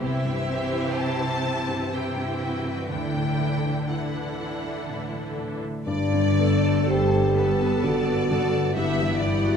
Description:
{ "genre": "cinematic, emotional film score for orchestra", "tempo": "62 BPM", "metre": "3/4", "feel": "uneven beats, rubato", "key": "G major", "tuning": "A4 = 441 Hz", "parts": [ { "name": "rich symphonic violin section", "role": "melody", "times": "0.0-9.6 s", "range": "E5 to A5", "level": "-34 LUFS", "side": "left 3 dB", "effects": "none" }, { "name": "rich symphonic violin section", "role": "second line", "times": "0.0-9.6 s", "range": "E4 to E5", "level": "-32 LUFS", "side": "left 1 dB", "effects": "none" }, { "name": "rich symphonic viola section", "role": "accompaniment", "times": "0.0-9.6 s", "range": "E3 to A4", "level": "-32 LUFS", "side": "right 2 dB", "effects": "none" }, { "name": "warm grand piano", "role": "accompaniment", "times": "0.0-9.6 s", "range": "C2 to A4", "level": "-30 LUFS", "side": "right 1 dB", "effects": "none" }, { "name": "concert harp", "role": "arpeggios", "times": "0.0-9.6 s", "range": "G2 to B5", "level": "-31 LUFS", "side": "left 3 dB", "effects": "none" }, { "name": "warm symphonic cello section", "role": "bass", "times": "0.0-9.6 s", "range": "G2 to D3", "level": "-31 LUFS", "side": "right 3 dB", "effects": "none" }, { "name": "mellow French horn section", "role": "sustained chords", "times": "5.9-9.6 s", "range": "D4 to G4", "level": "-24 LUFS", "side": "left 2 dB", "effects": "none" }, { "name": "rich symphonic double bass section", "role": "bass", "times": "5.9-9.6 s", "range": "G1", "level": "-27 LUFS", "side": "right 3 dB", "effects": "none" } ], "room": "wet scoring stage reverb, RT60 1.6 s", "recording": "minimal, uncompressed stereo recording", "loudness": "-22 LUFS", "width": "side -7 dB against mid", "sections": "0.0-5.9 A section; 5.9-9.6 A section", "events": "none", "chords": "0.0 C; 2.9 Dadd9; 5.9 Gadd9; 8.8 Emadd9/G", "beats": "| 0.02 0.98 1.93 | 2.90 3.91 4.89 | 5.86 6.89 7.83 | 8.76" }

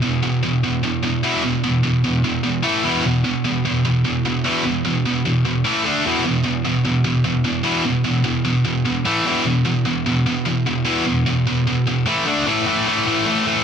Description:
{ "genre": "rock", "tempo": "150 BPM", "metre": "4/4", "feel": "straight", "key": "unclear", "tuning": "A4 = 440 Hz", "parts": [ { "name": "high-gain distorted guitar", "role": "solo", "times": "0.0-13.6 s", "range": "E2 to D4", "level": "-17 LUFS", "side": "equal", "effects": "distortion" } ], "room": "moderate studio reverb, RT60 0.7 s", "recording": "dense, heavily limited modern master", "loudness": "-17 LUFS", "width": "side -7 dB against mid", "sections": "0.0-12.5 A section; 12.5-13.6 B section", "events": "none", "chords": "0.0 E5; 2.6 A5; 2.8 E5; 5.6 A5; 5.8 D5; 6.0 E5; 9.1 A5; 9.3 E5; 12.1 A5; 12.3 D5; 12.5 A5", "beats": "0.03 0.43 0.83 | 1.23 1.64 2.04 2.44 | 2.84 3.24 3.64 4.04 | 4.44 4.84 5.25 5.65 | 6.05 6.45 6.85 7.25 | 7.65 8.05 8.45 8.86 | 9.26 9.66 10.06 10.46 | 10.86 11.26 11.66 12.06 | 12.46 12.86 13.26" }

